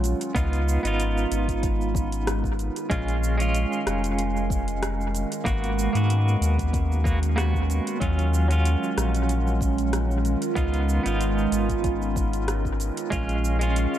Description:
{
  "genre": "organic downtempo",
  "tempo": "94 BPM",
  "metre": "4/4",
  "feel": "swing 54% on 16ths",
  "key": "unclear",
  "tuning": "A4 = 439 Hz",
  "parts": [
    { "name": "clean electric guitar", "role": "accompaniment", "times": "0.0-14.0 s", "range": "F#3 to F#4", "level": "-29 LUFS", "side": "right 1 dB", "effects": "tremolo, sidechain pumping, dub echo" },
    { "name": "warbly tape-like pad", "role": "sustained chords", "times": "0.0-14.0 s", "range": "D#3 to F#4", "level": "-29 LUFS", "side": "right 3 dB", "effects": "chorus, built-in reverb, phaser, sidechain pumping" },
    { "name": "warm sub bass", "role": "bass", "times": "0.0-13.9 s", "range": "E#1 to G#2", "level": "-24 LUFS", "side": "left 1 dB", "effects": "sidechain pumping" },
    { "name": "afro-pop drum kit", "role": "drums", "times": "0.0-14.0 s", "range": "hi-hat, rim click, shaker", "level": "-35 LUFS", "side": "equal", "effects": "dub echo" },
    { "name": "electronic kick drum", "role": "drums", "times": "0.4-13.3 s", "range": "none", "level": "-28 LUFS", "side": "left 1 dB", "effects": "none" }
  ],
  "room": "light reverb",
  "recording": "echo-heavy mix",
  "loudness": "-22 LUFS",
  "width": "side -11 dB against mid",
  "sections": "0.0-14.0 A section",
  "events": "none",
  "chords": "0.4 C#7; 2.9 A#m7; 5.5 G#m7; 8.0 D#m7; 10.6 C#7; 13.1 A#m7"
}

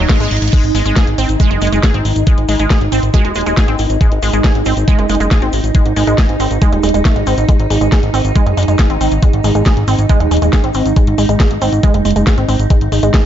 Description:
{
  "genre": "psychedelic trance",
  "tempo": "138 BPM",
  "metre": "4/4",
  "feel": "straight",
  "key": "G# major",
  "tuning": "A4 = 440 Hz",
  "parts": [
    { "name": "swarming drone", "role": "sustained chords", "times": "0.0-13.3 s", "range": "D#4", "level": "-19 LUFS", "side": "right 3 dB", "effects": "built-in reverb, sidechain pumping" },
    { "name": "wide unison pluck", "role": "riff", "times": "0.0-13.2 s", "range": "G#3 to G#4", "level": "-18 LUFS", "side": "moving between left 4 dB and right 4 dB", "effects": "auto-pan, sidechain pumping, ping-pong delay" },
    { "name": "fat analog bass", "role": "bass", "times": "0.0-13.1 s", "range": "D#1 to G#1", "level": "-16 LUFS", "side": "equal", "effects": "none" },
    { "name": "reverse cymbal", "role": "sound effects", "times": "0.0-0.5 s", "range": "none", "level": "-25 LUFS", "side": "right 6 dB", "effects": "none" },
    { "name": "drum and bass drum kit", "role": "drums", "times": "0.1-13.2 s", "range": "crash cymbal, hi-hat, snare drum", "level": "-21 LUFS", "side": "left 1 dB", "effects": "overdrive, studio reverb" },
    { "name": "electronic kick drum", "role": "drums", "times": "0.1-13.2 s", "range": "none", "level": "-11 LUFS", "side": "equal", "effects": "studio reverb" },
    { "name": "egg shaker", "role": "percussion", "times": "0.5-13.2 s", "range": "none", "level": "-33 LUFS", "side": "right 1 dB", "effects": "none" },
    { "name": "vowel-sweep wobble bass", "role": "second line", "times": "1.6-3.3, 8.6-9.8 s", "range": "G#3 to F#4", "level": "-28 LUFS", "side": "left 6 dB", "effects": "none" }
  ],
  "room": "digital ambience",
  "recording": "dark, warm production, nothing above 7.5 kHz",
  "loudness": "-10 LUFS",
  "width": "side -10 dB against mid",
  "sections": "0.0-13.3 A section",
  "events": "reverse cymbal 0.0-0.5; drum fill 0.3",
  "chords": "0.0 G#5"
}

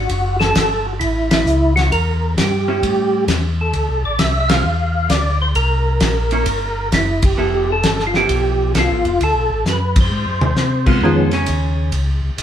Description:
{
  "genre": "soul jazz organ trio",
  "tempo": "132 BPM",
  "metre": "4/4",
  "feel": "swing 67% on 8ths",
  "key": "unclear",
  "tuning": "A4 = 438 Hz",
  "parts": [
    { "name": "percussive tonewheel organ", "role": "melody", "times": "0.0-11.3 s", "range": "Eb3 to F5", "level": "-18 LUFS", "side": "right 1 dB", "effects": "slow rotary speaker, chorus vibrato" },
    { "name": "mellow tonewheel organ", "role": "bass", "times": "0.0-12.4 s", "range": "F1 to B#2", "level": "-19 LUFS", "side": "left 1 dB", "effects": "slow rotary speaker" },
    { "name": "warm soul drum kit", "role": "drums", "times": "0.1-12.4 s", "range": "crash cymbal, hi-hat, kick drum, ride cymbal, snare drum, toms", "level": "-20 LUFS", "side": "equal", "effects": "none" },
    { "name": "vintage hollow-body jazz guitar", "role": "accompaniment", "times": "2.7-11.9 s", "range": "Db3 to A4", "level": "-22 LUFS", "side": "right 1 dB", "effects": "none" }
  ],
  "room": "moderate stone room reverb, RT60 1.0 s",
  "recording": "band playing live in one room",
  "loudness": "-14 LUFS",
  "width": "side -9 dB against mid",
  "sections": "0.0-11.0 A section; 11.0-12.4 B section",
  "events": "band accent 1.2, 4.4, 7.2, 9.9; drum fill 9.7-10.6; hollow-body jazz guitar solo 11.0-12.4",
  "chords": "0.1 F#m7; 1.9 Edim; 2.8 A7; 3.7 Dm9; 5.6 C7; 7.4 Fmaj9#11; 9.2 Bm7; 10.1 G#7; 11.0 Db7"
}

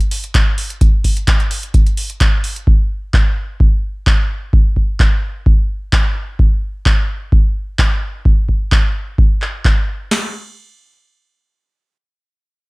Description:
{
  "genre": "house",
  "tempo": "129 BPM",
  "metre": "4/4",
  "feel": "straight",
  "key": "none",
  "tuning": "none",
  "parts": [
    { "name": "booming analog drum machine", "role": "drums", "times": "0.0-9.7 s", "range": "handclaps, hi-hat", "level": "-21 LUFS", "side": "equal", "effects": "none" },
    { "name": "booming analog drum machine", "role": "drums", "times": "0.3-10.2 s", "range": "crash cymbal, kick drum, snare drum", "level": "-13 LUFS", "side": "equal", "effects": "none" }
  ],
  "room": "little or no reverb",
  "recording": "none",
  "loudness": "-13 LUFS",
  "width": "side -27 dB against mid",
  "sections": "0.0-10.1 A section; 10.1-12.7 B section",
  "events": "none",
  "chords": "none"
}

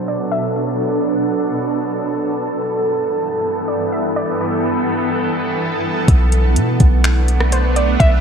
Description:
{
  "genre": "hip hop, atmospheric cloud-rap",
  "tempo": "125 BPM",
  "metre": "4/4",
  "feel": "half-time",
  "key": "unclear",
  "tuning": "A4 = 441 Hz",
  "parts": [
    { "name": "warbly dusty pluck", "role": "melody", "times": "0.0-8.2 s", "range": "C5 to E5", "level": "-23 LUFS", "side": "right 1 dB", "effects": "chorus, phaser, ping-pong delay" },
    { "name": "shimmering ambient pad", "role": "sustained chords", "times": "0.0-8.2 s", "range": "G2 to A4", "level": "-18 LUFS", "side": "right 1 dB", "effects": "chorus, built-in reverb, sidechain pumping" },
    { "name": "wind-like tuned noise texture", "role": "texture", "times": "0.0-6.0 s", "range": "D4 to A5", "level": "-31 LUFS", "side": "equal", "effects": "built-in reverb" },
    { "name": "warm 808-style bass", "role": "bass", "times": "6.1-8.2 s", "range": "B1 to B2", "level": "-14 LUFS", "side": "equal", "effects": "none" },
    { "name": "smooth R&B drum kit", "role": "drums", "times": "6.1-8.1 s", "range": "finger snaps, hi-hat, kick drum, rim click", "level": "-15 LUFS", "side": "equal", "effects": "none" }
  ],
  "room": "wet lush hall reverb, RT60 2.6 s",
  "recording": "dreamy mix soaked in reverb, low-pass filter",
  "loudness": "-15 LUFS",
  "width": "side -7 dB against mid",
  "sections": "0.0-6.1 A section; 6.1-8.2 B section",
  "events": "filter sweep 0.0-6.1",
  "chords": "0.0 Bm7; 2.2 G69; 6.1 Bm7"
}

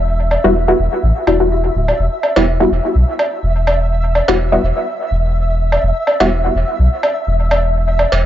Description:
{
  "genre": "dub techno",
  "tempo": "125 BPM",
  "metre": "4/4",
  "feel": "swing 55% on 16ths",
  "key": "E minor",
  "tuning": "A4 = 439 Hz",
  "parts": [
    { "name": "soft dub sub bass", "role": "bass", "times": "0.0-8.3 s", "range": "D1 to B1", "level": "-15 LUFS", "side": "equal", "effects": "tube saturation" },
    { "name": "flickering grainy texture", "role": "texture", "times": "0.0-8.3 s", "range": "E5", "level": "-22 LUFS", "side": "right 1 dB", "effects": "built-in reverb" },
    { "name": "woodblock and cowbell", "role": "percussion", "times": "0.3-8.2 s", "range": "none", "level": "-18 LUFS", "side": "right 1 dB", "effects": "dub echo" },
    { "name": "filtered dub chord stab", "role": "stabs", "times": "0.4-6.3 s", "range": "G3 to F#4", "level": "-16 LUFS", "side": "left 1 dB", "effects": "chorus, phaser, dub echo" }
  ],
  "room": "digital ambience",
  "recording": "dry, gritty hardware recording, nothing above 7.6 kHz",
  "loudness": "-12 LUFS",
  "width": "side -12 dB against mid",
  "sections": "0.0-8.3 A section",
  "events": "none",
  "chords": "0.0 E5"
}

